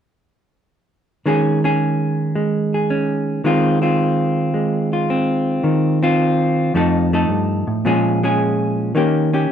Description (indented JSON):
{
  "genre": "solo jazz",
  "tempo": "109 BPM",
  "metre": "4/4",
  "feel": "swing 69% on 8ths",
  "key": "Ab major",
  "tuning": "A4 = 440 Hz",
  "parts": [
    { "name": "hollow-body jazz guitar", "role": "solo", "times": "1.3-9.5 s", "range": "F2 to A4", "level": "-15 LUFS", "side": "equal", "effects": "none" }
  ],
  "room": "moderate club reverb, RT60 0.5 s",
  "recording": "none",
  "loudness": "-16 LUFS",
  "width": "side -8 dB against mid",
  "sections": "1.2-9.5 A section",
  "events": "none",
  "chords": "1.2 Eb7sus4; 3.4 Ab6/Eb; 6.7 F7; 7.8 Bbm7; 8.9 Eb7"
}